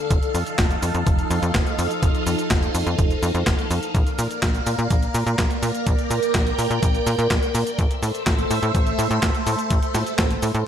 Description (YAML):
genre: italo disco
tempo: 125 BPM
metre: 4/4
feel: straight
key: unclear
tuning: A4 = 440 Hz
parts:
  - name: phased string machine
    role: sustained chords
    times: 0.0-10.7 s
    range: F3 to G5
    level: -24 LUFS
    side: right 1 dB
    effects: ensemble chorus, phaser
  - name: tight sequencer bass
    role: bass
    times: 0.1-10.6 s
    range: F1 to Bb2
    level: -24 LUFS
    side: equal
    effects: tube saturation, tape echo
  - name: clean 12-bit digital drum machine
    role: drums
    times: 0.1-10.6 s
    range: cabasa, handclaps, hi-hat, snare drum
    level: -27 LUFS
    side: equal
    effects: gated reverb
  - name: electronic kick drum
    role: drums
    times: 0.1-10.3 s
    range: none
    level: -22 LUFS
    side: equal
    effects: none
room: light reverb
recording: none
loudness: -19 LUFS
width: side -9 dB against mid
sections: 0.0-10.7 A section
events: none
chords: 0.1 F7; 3.9 Bb; 7.8 Am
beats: | 0.11 0.59 1.07 1.55 | 2.03 2.51 2.99 3.47 | 3.95 4.43 4.91 5.39 | 5.87 6.35 6.83 7.31 | 7.79 8.27 8.75 9.23 | 9.71 10.19 10.67